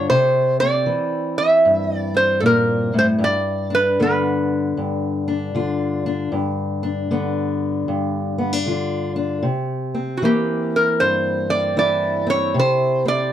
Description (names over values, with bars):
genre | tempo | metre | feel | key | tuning
acoustic country blues, solo or duo | 77 BPM | 4/4 | swing 64% on 8ths | G mixolydian | A4 = 439 Hz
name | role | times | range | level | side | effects
metal-body resonator slide guitar | melody | 0.0-13.3 s | F#4 to E5 | -18 LUFS | right 1 dB | none
fingerpicked steel-string acoustic guitar | accompaniment | 0.0-13.3 s | G2 to F4 | -21 LUFS | left 2 dB | none
room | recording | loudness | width
moderate studio reverb, RT60 0.6 s | dark, warm production | -17 LUFS | side -10 dB against mid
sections
0.0-13.3 A section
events
none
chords
0.1 C7; 3.2 G7; 9.4 C7